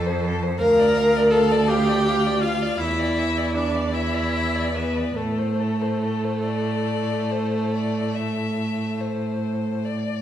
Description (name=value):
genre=classical, slow romantic movement for string quartet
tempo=46-56 BPM (dotted quarters)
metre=12/8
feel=rubato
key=A minor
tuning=A4 = 440 Hz
part: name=rich violin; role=melody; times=0.0-10.2 s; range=A4 to F5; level=-29 LUFS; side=left 7 dB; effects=none
part: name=clear violin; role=second line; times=0.0-9.9 s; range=A4 to Bb5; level=-31 LUFS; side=left 2 dB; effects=none
part: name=rich viola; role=accompaniment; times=0.0-9.8 s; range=A3 to Bb4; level=-24 LUFS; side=equal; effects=none
part: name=rich cello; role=bass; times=0.0-10.0 s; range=D2 to A2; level=-24 LUFS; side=right 2 dB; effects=none
room=wet recital hall reverb, RT60 1.5 s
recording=heard from further back in the room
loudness=-20 LUFS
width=side -11 dB against mid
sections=0.0-10.2 A section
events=none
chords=0.0 F; 0.6 Bb/D; 2.8 Bmadd11/E; 5.2 Am